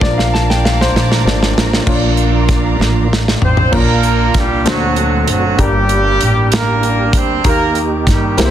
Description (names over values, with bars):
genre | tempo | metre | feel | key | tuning
slow gospel | 65 BPM (dotted quarters) | 6/8 | straight | Bb major | A4 = 439 Hz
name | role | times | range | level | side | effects
clear grand piano | accompaniment | 0.0-8.5 s | G2 to A5 | -19 LUFS | left 4 dB | none
clear studio string section | sustained chords | 0.0-3.7 s | Bb4 to D6 | -25 LUFS | right 3 dB | none
tonewheel organ | sustained chords | 0.0-8.5 s | E3 to Bb4 | -21 LUFS | right 5 dB | slow rotary speaker, chorus vibrato
upright bass | bass | 0.0-8.5 s | F#1 to G2 | -16 LUFS | equal | none
modern studio drum kit | drums | 0.0-8.5 s | crash cymbal, hi-hat, kick drum, snare drum, toms | -16 LUFS | equal | none
warm horn section | melody | 3.4-8.5 s | E3 to C5 | -16 LUFS | right 2 dB | none
room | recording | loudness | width
light reverb, small room ambience | dense, heavily limited modern master | -11 LUFS | side -10 dB against mid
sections
0.0-1.9 A section; 1.9-3.7 B section; 3.7-8.5 C section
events
grand piano solo 0.0-1.9; drum fill 0.0-1.9, 2.8-3.7; tonewheel organ solo 1.9-3.7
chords
0.0 Bb; 4.7 D7b13; 5.6 Gm; 7.4 Eb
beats
| 0.01 0.94 | 1.87 2.80 | 3.73 4.66 | 5.59 6.52 | 7.45 8.38